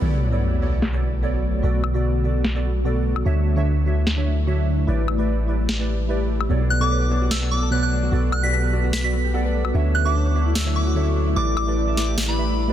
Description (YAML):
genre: future bass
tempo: 148 BPM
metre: 4/4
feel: half-time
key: D major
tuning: A4 = 440 Hz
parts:
  - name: glassy digital keys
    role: accompaniment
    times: 0.0-12.7 s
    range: B2 to F#5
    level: -26 LUFS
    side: right 3 dB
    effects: chorus, tape echo
  - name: ethereal airy pad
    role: sustained chords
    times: 0.0-12.7 s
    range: D3 to F#5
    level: -30 LUFS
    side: left 1 dB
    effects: ensemble chorus, built-in reverb
  - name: long sustained 808-style bass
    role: bass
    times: 0.0-12.7 s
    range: A1 to D2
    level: -21 LUFS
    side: equal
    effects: none
  - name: sub drop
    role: sound effects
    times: 0.0-1.6 s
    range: none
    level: -28 LUFS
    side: left 1 dB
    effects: none
  - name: electronic snare drum and woodblock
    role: drums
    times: 0.8-12.3 s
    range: none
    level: -30 LUFS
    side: left 1 dB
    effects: low-pass filter on hats, low-pass filter on snare, low-pass filter on perc
  - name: concert harp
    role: arpeggios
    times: 6.5-12.7 s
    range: B3 to E5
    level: -29 LUFS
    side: left 2 dB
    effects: tape echo
  - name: soft synth bell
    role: melody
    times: 6.7-12.7 s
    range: B5 to B6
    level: -27 LUFS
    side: equal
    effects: chorus, phaser, tape echo
room: digital ambience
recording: dense, heavily limited modern master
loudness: -19 LUFS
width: side -11 dB against mid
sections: 0.0-12.7 A section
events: impact 0.0-1.6; filter sweep on drum 0.0-12.7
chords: 0.0 Bm7; 1.6 Gmaj9/B; 3.3 Dmaj9; 4.9 A7sus4; 6.5 Bm7; 8.1 Gmaj9/B; 9.7 Dmaj9; 11.4 A7sus4